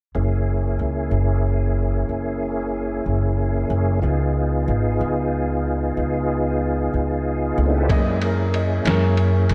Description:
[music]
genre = slow blues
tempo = 62 BPM (dotted quarters)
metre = 12/8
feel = straight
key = F# mixolydian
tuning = A4 = 440 Hz
[part]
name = tonewheel organ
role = sustained chords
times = 0.1-9.5 s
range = A3 to D5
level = -26 LUFS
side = equal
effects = slow rotary speaker, chorus vibrato
[part]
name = upright bass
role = bass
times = 0.2-9.5 s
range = F#1 to F#2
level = -23 LUFS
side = equal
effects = none
[part]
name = warm concert grand piano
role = accompaniment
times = 7.9-9.5 s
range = G#3 to D#5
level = -28 LUFS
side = equal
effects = lush chorus
[part]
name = lo-fi sampler-style drum kit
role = drums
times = 7.9-9.5 s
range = kick drum, ride cymbal, snare drum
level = -26 LUFS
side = equal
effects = none
[sound]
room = moderate lush hall reverb, RT60 2.9 s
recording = dreamy mix soaked in reverb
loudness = -21 LUFS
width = mono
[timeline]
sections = 0.2-7.9 A section; 7.9-9.5 B section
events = grand piano solo 7.9-9.5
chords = 0.2 F#7; 4.0 C#7; 7.9 F#9

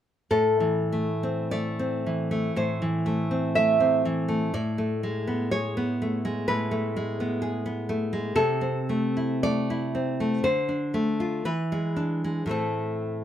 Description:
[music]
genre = romantic piece for solo classical guitar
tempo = 48-64 BPM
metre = 4/4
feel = rubato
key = A minor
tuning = A4 = 439 Hz
[part]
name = nylon-string guitar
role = solo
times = 0.3-13.2 s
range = A2 to E5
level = -24 LUFS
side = equal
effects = none
[sound]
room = light reverb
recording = none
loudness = -24 LUFS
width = side -10 dB against mid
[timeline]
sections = 0.3-13.2 A section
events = none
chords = 0.3 Am; 4.5 G#dim/A; 8.4 Am/C; 10.5 Dm; 11.5 E7; 12.5 Am

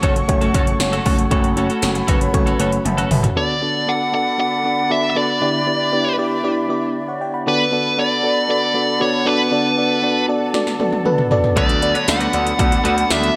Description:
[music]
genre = 1980s-style pop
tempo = 117 BPM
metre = 4/4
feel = straight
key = D major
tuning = A4 = 440 Hz
[part]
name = FM electric piano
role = accompaniment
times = 0.0-13.4 s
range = D3 to B5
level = -22 LUFS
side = equal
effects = phaser
[part]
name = flute section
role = sustained chords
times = 0.0-13.4 s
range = D4 to C#6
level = -28 LUFS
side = equal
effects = none
[part]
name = twelve-string electric guitar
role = riff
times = 0.0-3.3, 11.6-13.3 s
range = A3 to B4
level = -28 LUFS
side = equal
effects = analog chorus, digital delay
[part]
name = gritty slap bass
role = bass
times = 0.0-3.3, 11.6-13.3 s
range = F#1 to D2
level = -25 LUFS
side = equal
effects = overdrive
[part]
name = 80s electronic pad drums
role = drums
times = 0.0-3.4, 10.5-13.4 s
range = hi-hat, kick drum, snare drum, tambourine, toms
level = -22 LUFS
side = equal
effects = gated reverb on snare and toms, gated reverb
[part]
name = dark smooth lead guitar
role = melody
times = 3.4-13.4 s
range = B4 to F#5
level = -21 LUFS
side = equal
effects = overdrive, digital delay
[part]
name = distorted electric guitar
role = accompaniment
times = 11.6-13.4 s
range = B2 to B3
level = -33 LUFS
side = equal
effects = none
[sound]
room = moderate lush hall reverb, RT60 2.1 s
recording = none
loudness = -18 LUFS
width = mono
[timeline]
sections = 0.0-3.4 A section; 3.4-13.4 B section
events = FM electric piano fill 2.3-3.4; drum fill 2.9-3.4, 10.5-11.6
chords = 0.0 F#m; 3.4 Bm7/D; 5.4 Em7/D; 7.5 D6

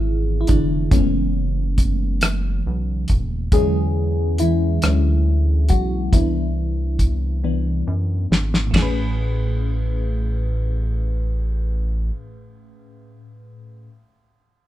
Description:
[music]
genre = slow six-eight R&B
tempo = 46 BPM (dotted quarters)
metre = 6/8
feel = straight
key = A major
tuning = A4 = 441 Hz
[part]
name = FM electric piano with auto-pan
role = accompaniment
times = 0.0-13.9 s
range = A2 to B4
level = -24 LUFS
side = left 1 dB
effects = phaser
[part]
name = rubbery square bass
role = bass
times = 0.0-12.1 s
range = D#1 to F#2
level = -21 LUFS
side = equal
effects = none
[part]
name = cloth-damped thuddy drum kit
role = drums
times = 0.5-9.0 s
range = hi-hat, kick drum, ride cymbal, rim click, snare drum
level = -18 LUFS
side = equal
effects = none
[sound]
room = light reverb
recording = band playing live in one room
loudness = -18 LUFS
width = side -13 dB against mid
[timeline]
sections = 0.0-8.7 A section; 8.7-11.3 B section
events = FM electric piano solo 0.0-8.7; drum fill 7.4-8.7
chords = 0.0 Amaj9 (rootless); 0.9 F#m11; 3.5 E13; 6.1 Cmaj7; 8.7 Amaj9

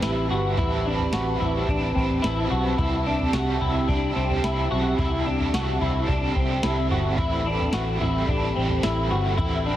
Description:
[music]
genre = dream pop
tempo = 109 BPM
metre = 4/4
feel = straight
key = A dorian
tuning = A4 = 440 Hz
[part]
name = biting overdriven guitar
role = accompaniment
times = 0.0-9.8 s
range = A2 to B4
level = -30 LUFS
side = right 3 dB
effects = tremolo, lush chorus
[part]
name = hollow soft pad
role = sustained chords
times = 0.0-9.8 s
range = C4 to B5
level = -28 LUFS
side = right 1 dB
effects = chorus
[part]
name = semi-hollow electric guitar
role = arpeggios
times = 0.0-9.8 s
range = C4 to F#4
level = -27 LUFS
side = left 2 dB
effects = ensemble chorus, tape echo
[part]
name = vintage muted fingered electric bass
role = bass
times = 0.0-9.8 s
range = G1 to C2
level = -27 LUFS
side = equal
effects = none
[part]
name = soft vintage rhythm box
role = drums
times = 0.0-9.5 s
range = kick drum, snare drum, toms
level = -28 LUFS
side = equal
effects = none
[part]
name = vibraphone with soft mallets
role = texture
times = 3.6-9.2 s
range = G4 to G5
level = -36 LUFS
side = left 2 dB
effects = tape echo
[sound]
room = moderate scoring stage reverb, RT60 1.9 s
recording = heavily compressed radio sound, multiband compression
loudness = -21 LUFS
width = side -12 dB against mid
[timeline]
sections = 0.0-9.8 A section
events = none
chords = 0.0 Am9

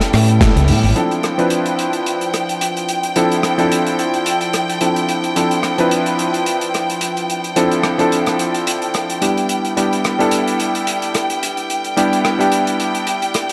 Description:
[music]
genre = nu-disco, nu disco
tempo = 109 BPM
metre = 4/4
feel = swing 55% on 16ths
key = D dorian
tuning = A4 = 440 Hz
[part]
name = warm electric grand piano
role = accompaniment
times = 0.0-13.5 s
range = F3 to B4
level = -20 LUFS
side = equal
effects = tape echo
[part]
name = bright studio string section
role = sustained chords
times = 0.0-13.5 s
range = G5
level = -24 LUFS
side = equal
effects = sidechain pumping
[part]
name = modern studio drum kit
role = drums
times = 0.0-13.5 s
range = hi-hat, rim click, snare drum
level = -24 LUFS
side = equal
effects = none
[part]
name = fingered electric bass with an envelope filter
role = bass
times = 0.1-0.9 s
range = A1 to A2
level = -15 LUFS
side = equal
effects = tube saturation
[part]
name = electronic kick drum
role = drums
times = 0.4-0.5 s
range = none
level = -18 LUFS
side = equal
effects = none
[sound]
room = light reverb, small room ambience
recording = dry, gritty hardware recording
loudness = -17 LUFS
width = mono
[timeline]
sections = 1.0-13.5 A section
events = band accent 0.4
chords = 0.0 A7; 1.0 Dm7; 9.5 Em7

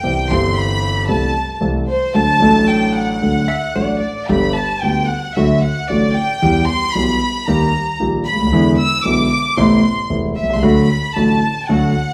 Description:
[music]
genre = tango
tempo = 113 BPM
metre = 4/4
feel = rubato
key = unclear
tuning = A4 = 437 Hz
[part]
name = warm chamber violin section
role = second line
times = 0.0-12.1 s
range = C5 to E6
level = -21 LUFS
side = equal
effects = none
[part]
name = dark concert grand piano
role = accompaniment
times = 0.0-11.9 s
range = E1 to A4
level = -18 LUFS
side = equal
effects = none
[part]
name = hollow-body jazz guitar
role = second line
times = 3.5-4.3 s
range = D5 to E5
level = -26 LUFS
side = equal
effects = none
[sound]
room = wet large studio reverb, RT60 1.2 s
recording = band playing live in one room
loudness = -16 LUFS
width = mono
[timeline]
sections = 0.0-4.3 A section; 4.3-12.1 A section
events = violin section solo 0.0-4.3, 4.3-12.1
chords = 0.0 C; 1.1 Am/C; 2.2 D; 4.3 G; 5.4 D; 6.4 Em; 7.5 Eb; 8.5 E7; 9.6 Amadd9; 10.6 D

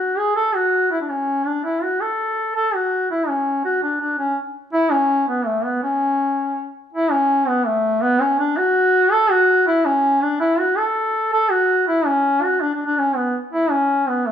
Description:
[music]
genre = celtic folk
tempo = 109 BPM (dotted quarters)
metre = 6/8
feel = straight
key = A major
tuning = A4 = 439 Hz
[part]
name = warm duduk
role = solo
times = 0.0-14.3 s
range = A3 to A4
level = -17 LUFS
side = equal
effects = none
[sound]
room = moderate large studio reverb, RT60 1.1 s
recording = band playing live in one room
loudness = -17 LUFS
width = side -9 dB against mid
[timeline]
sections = 0.0-6.9 A section; 6.9-14.3 A section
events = none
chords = none

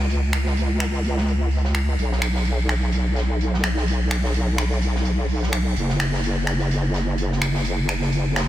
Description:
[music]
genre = bass house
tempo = 127 BPM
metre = 4/4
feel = swing 57% on 16ths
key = unclear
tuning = A4 = 440 Hz
[part]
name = wobble bass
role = bass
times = 0.0-8.5 s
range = Gb1 to Db2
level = -20 LUFS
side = equal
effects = chorus, tube saturation
[part]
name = open jazz drum kit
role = drums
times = 0.1-8.5 s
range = hi-hat, snare drum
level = -34 LUFS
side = right 2 dB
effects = high-pass filter on hats, low-pass filter on hats, studio reverb, high-pass filter on snare, low-pass filter on snare, high-pass filter on room, low-pass filter on room
[part]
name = electronic finger snaps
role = drums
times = 0.3-8.5 s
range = none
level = -27 LUFS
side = equal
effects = studio reverb
[sound]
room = light reverb, studio ambience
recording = none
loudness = -20 LUFS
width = side -13 dB against mid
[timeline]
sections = 0.0-8.5 A section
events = none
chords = none

